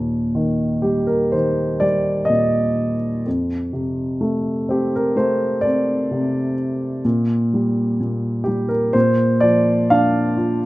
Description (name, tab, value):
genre	classical, lyrical solo piano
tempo	63 BPM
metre	4/4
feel	rubato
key	Eb major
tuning	A4 = 440 Hz
part	dark baby grand piano	solo	0.0-10.7 s	Eb2 to F5	-17 LUFS	equal	none
room	light reverb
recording	close, detailed microphones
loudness	-17 LUFS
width	side -18 dB against mid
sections	0.0-10.7 A section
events	none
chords	0.0 Eb; 3.3 F6; 7.0 Gm/Bb; 8.9 Bb